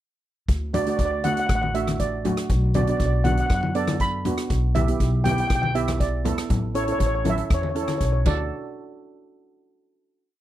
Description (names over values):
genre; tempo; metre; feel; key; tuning
calypso; 120 BPM; 4/4; straight; D major; A4 = 440 Hz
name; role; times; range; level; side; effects
upright bass; bass; 0.5-8.5 s; A1 to F#2; -25 LUFS; equal; none
street-band drum kit; drums; 0.5-8.4 s; crash cymbal, hi-hat, kick drum, rim click; -26 LUFS; equal; none
steel pan; melody; 0.7-8.5 s; C#5 to B5; -26 LUFS; right 1 dB; none
steel pan; accompaniment; 0.7-8.5 s; A3 to A4; -28 LUFS; right 4 dB; none
congas; percussion; 0.7-8.5 s; none; -28 LUFS; left 4 dB; none
room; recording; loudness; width
little or no reverb; dry, close 1970s-style studio recording; -20 LUFS; side -13 dB against mid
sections
0.5-8.5 verse; 8.5-10.4 final hit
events
none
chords
0.5 D; 2.5 Bm; 4.5 Em/B; 6.5 A; 8.3 D; 8.5 N.C.